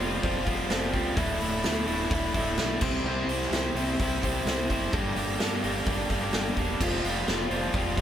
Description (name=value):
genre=quiet-loud alternative rock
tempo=128 BPM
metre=4/4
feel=straight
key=unclear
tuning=A4 = 440 Hz
part: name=overdriven electric guitar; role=riff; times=0.0-8.0 s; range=D2 to C5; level=-28 LUFS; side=equal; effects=none
part: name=fuzz fingered electric bass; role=bass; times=0.0-8.0 s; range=D1 to G2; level=-33 LUFS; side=equal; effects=overdrive
part: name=big rock drum kit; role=drums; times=0.0-8.0 s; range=crash cymbal, hi-hat, kick drum, snare drum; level=-30 LUFS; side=equal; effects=none
room=moderate small room reverb, RT60 0.6 s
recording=band playing live in one room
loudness=-25 LUFS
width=side -10 dB against mid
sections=0.0-8.0 A section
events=none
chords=0.0 Fsus2; 1.2 Dsus2; 2.8 C; 4.9 Gm; 6.8 Fsus2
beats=0.24 0.71 | 1.18 1.65 2.12 2.58 | 3.06 3.52 3.99 4.46 | 4.93 5.40 5.87 6.34 | 6.81 7.28 7.75